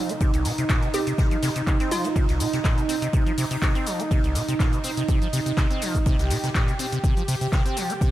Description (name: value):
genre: acid house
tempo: 123 BPM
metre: 4/4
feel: swing 54% on 16ths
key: C minor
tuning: A4 = 442 Hz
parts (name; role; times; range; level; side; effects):
- warm analog pad; sustained chords; 0.0-8.1 s; Eb4 to G4; -28 LUFS; right 3 dB; lush chorus, sidechain pumping
- acid bass, saw; riff; 0.0-8.1 s; C2 to C4; -27 LUFS; equal; tube saturation, analog chorus
- punchy analog drum machine; drums; 0.1-8.1 s; handclaps, hi-hat, shaker; -32 LUFS; left 2 dB; none
- electronic kick drum; drums; 0.2-8.1 s; none; -22 LUFS; equal; none
- swinging big-band drum kit; drums; 0.2-8.1 s; hi-hat, ride cymbal, snare drum; -39 LUFS; right 1 dB; high-pass filter on cymbals, high-pass filter on hats, high-pass filter on snare, high-pass filter on room
- hollow square pluck; melody; 0.9-2.6 s; F4 to G4; -31 LUFS; equal; chorus, analog delay
room: light reverb, small room ambience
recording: none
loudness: -21 LUFS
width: side -14 dB against mid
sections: 0.0-8.1 A section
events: none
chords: 0.0 Cm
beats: | 0.21 0.69 1.18 1.67 | 2.16 2.65 3.13 3.62 | 4.11 4.60 5.08 5.57 | 6.06 6.55 7.04 7.52 | 8.01